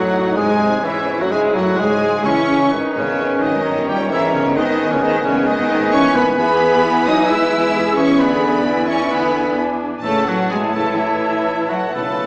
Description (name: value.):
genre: classical.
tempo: 130 BPM.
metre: 4/4.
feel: rubato.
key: E major from 6.4 s.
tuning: A4 = 443 Hz.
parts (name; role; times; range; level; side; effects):
dark symphonic violin section; melody; 0.0-12.3 s; C#5 to E6; -29 LUFS; equal; none.
bright clarinet; second line; 0.0-12.3 s; E3 to D5; -28 LUFS; equal; none.
small flute group; second line; 0.0-12.3 s; C#4 to B5; -26 LUFS; equal; none.
warm oboe; second line; 0.0-12.3 s; C#4 to E5; -28 LUFS; equal; none.
warm symphonic violin section; second line; 0.0-12.3 s; C#5 to E6; -32 LUFS; equal; none.
mellow bassoon; accompaniment; 0.0-12.3 s; D#3 to C#4; -25 LUFS; equal; none.
warm symphonic viola section; accompaniment; 0.0-12.3 s; B3 to G#4; -27 LUFS; equal; none.
mellow French horn section; sustained chords; 0.0-12.3 s; E2 to G#3; -27 LUFS; equal; none.
clear symphonic cello section; bass; 0.0-12.3 s; C#3 to E4; -22 LUFS; equal; none.
rich symphonic double bass section; bass; 0.0-12.3 s; G1 to C#3; -30 LUFS; equal; none.
timpani; percussion; 12.0-12.3 s; B2; -41 LUFS; equal; none.
room: wet scoring stage reverb, RT60 2.1 s.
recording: vinyl crackle, small speaker sound.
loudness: -17 LUFS.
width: mono.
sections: 0.0-12.3 A section.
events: none.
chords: 0.0 G#7/F#; 0.8 C#m/E; 2.7 G#m; 3.6 D#7/G; 4.6 G#m; 6.4 E; 8.2 E7; 10.0 A.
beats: 0.37 | 0.84 1.32 1.79 2.25 | 2.72 3.19 3.65 4.11 | 4.57 5.02 5.47 5.93 | 6.38 6.84 7.30 7.75 | 8.21 8.66 9.12 9.58 | 10.04 10.50 10.97 11.45 | 11.95.